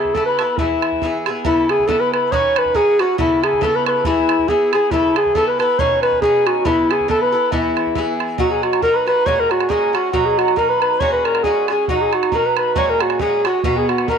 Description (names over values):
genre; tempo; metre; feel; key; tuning
celtic folk, Celtic polka; 138 BPM; 2/4; swing 56% on 8ths; E major, B major from 8.4 s; A4 = 437 Hz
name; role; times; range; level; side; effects
dark clarinet; melody; 0.0-14.2 s; E4 to C#5; -17 LUFS; equal; none
mellow hollow wooden whistle; second line; 0.0-14.2 s; E5 to D#6; -23 LUFS; left 12 dB; none
Irish bouzouki; accompaniment; 0.0-14.2 s; A#2 to B4; -21 LUFS; right 1 dB; none
bodhran; percussion; 0.0-14.2 s; none; -24 LUFS; right 6 dB; none
room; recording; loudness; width
moderate spring reverb, RT60 1.9 s, studio ambience; 1960s-style stereo with parts hard left and right; -14 LUFS; side -7 dB against mid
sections
0.0-1.5 A section; 1.5-8.4 A section; 8.4-14.2 B section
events
none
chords
0.0 Aadd9/C#; 0.6 E; 1.5 Aadd9; 2.3 Badd9; 3.2 Aadd9/C#; 4.1 E; 4.9 Aadd9; 5.8 Badd9; 6.7 Aadd9/C#; 7.5 E; 8.4 B; 9.3 F#add9; 10.1 B; 11.0 F#add9; 11.9 B; 12.8 F#add9; 13.6 B